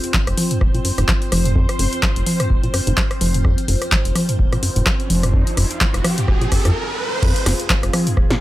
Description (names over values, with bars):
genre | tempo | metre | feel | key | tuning
acid house | 127 BPM | 4/4 | swing 57% on 16ths | F phrygian | A4 = 440 Hz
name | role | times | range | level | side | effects
string machine, full ensemble | sustained chords | 0.0-8.4 s | C4 to C5 | -27 LUFS | equal | ensemble chorus, sidechain pumping
punchy analog drum machine | drums | 0.0-8.4 s | crash cymbal, handclaps, hi-hat, rim click, snare drum | -22 LUFS | left 1 dB | overdrive, small room ambience
deep acid bass | riff | 0.1-8.4 s | F2 to F3 | -22 LUFS | equal | overdrive, tape echo
electronic kick drum | drums | 0.1-8.3 s | none | -19 LUFS | equal | small room ambience
round analog bass | bass | 0.3-8.3 s | Eb1 to F2 | -20 LUFS | equal | sidechain pumping
riser | sound effects | 4.6-7.2 s | none | -26 LUFS | right 2 dB | none
room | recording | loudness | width
little or no reverb | none | -15 LUFS | side -16 dB against mid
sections
0.0-7.2 A section; 7.2-8.4 B section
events
filter sweep on acid bass 0.0-7.2; riser 4.6-7.2; stop 6.8-7.2; drop 7.2-8.4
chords
0.0 F5; 7.2 Fm